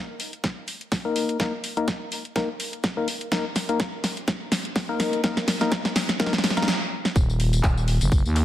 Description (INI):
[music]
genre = bass house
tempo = 125 BPM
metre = 4/4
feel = swing 55% on 16ths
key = Eb minor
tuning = A4 = 440 Hz
[part]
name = house drum kit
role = drums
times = 0.2-8.4 s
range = handclaps, hi-hat, snare drum, tambourine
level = -26 LUFS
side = equal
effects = none
[part]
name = electronic kick drum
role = drums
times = 0.4-8.2 s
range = none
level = -24 LUFS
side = equal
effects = high-pass filter on kick
[part]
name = percussive organ stab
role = stabs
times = 1.1-6.7 s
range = Bb3 to Bb4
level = -28 LUFS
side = left 3 dB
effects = chorus, sidechain pumping, tape echo
[part]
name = growling FM bass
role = bass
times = 7.2-8.4 s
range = Eb1 to Eb2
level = -21 LUFS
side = equal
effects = tube saturation, sidechain pumping
[sound]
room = moderate digital room reverb, RT60 1.3 s, digital ambience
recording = none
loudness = -22 LUFS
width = side -13 dB against mid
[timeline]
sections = 0.0-7.2 A section; 7.2-8.4 B section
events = build-up 0.0-7.2; drum fill 0.0-6.7, 6.7-7.2; filter sweep on synth stab 0.0-7.2; stop 6.7-7.2; drop 7.2-8.4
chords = 0.0 Eb5; 7.2 Ebm